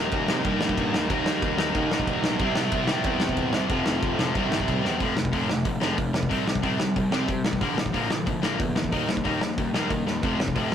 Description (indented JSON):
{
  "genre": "punk rock",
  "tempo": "184 BPM",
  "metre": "4/4",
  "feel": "straight",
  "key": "unclear",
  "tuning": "A4 = 435 Hz",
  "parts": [
    { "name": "crunchy overdriven guitar", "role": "riff", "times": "0.0-5.0 s", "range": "F2 to Eb4", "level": "-34 LUFS", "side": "right 1 dB", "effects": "none" },
    { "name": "distorted electric guitar", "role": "riff", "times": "0.0-10.7 s", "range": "F2 to Eb4", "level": "-28 LUFS", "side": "left 7 dB", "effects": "overdrive" },
    { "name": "overdriven semi-hollow guitar", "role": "riff", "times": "0.0-10.7 s", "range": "Bb2 to F4", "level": "-30 LUFS", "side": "right 6 dB", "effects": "none" },
    { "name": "fuzz picked electric bass", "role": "bass", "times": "0.0-10.7 s", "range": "F1 to Eb3", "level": "-31 LUFS", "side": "right 1 dB", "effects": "overdrive" },
    { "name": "loose indie drum kit", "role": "drums", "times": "0.1-10.7 s", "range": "crash cymbal, hi-hat, kick drum, snare drum", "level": "-27 LUFS", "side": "equal", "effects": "none" }
  ],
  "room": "light reverb",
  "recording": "rough rehearsal-room recording",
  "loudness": "-22 LUFS",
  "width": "side -9 dB against mid",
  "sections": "0.0-5.0 A section; 5.0-10.7 B section",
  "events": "drum fill 4.8, 10.1",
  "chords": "0.0 Eb; 2.4 C; 3.7 F; 4.3 C; 5.0 F; 6.3 C5; 7.6 Bb; 8.9 Eb; 10.2 F"
}